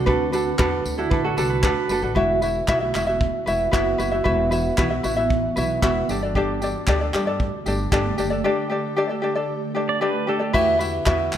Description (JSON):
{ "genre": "acoustic pop", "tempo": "115 BPM", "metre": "4/4", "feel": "straight", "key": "E minor", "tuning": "A4 = 441 Hz", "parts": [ { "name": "ukulele", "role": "accompaniment", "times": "0.0-11.4 s", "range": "D4 to E5", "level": "-22 LUFS", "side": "left 1 dB", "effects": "none" }, { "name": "ethereal airy pad", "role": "sustained chords", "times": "0.0-11.4 s", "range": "D3 to G4", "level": "-28 LUFS", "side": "right 5 dB", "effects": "ensemble chorus, built-in reverb, phaser" }, { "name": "upright bass", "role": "bass", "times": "0.0-11.4 s", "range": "E1 to G2", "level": "-27 LUFS", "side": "equal", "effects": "none" }, { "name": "soft brush drum kit", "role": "drums", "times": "0.1-11.4 s", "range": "crash cymbal, handclaps, kick drum, tambourine", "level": "-26 LUFS", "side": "equal", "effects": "none" }, { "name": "pedal steel guitar", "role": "second line", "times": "1.0-2.1, 9.9-10.7 s", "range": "E4 to D5", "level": "-27 LUFS", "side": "right 6 dB", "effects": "none" } ], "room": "moderate scoring stage reverb, RT60 1.5 s", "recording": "none", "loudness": "-19 LUFS", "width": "side -10 dB against mid", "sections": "0.0-2.2 A section; 2.2-10.5 B section", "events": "none", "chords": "0.0 D6; 2.2 Esus2; 6.1 Gsus2; 10.5 Esus2" }